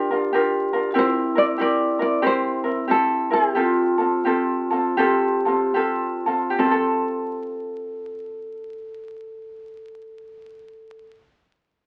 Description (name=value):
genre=Hawaiian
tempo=71-96 BPM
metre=4/4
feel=swing 63% on 8ths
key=F major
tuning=A4 = 442 Hz
part: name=tenor ukulele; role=melody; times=0.0-11.1 s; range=G4 to G5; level=-24 LUFS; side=equal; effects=none
part: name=vibraphone with medium hard mallets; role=second line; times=0.0-11.0 s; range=E4 to A4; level=-29 LUFS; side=equal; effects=none
part: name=ukulele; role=accompaniment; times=0.0-11.2 s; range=C4 to Bb4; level=-24 LUFS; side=equal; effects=none
room=light reverb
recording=very old 78 rpm record, vinyl crackle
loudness=-21 LUFS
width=mono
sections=0.0-6.6 A section; 6.6-9.9 B section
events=slowing down 1.0-6.6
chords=0.0 Bb6; 1.0 C7; 3.6 Fadd9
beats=0.34 | 0.96 1.59 2.23 2.89 | 3.56 4.26 4.99 5.76 | 6.57 7.41 8.25 9.09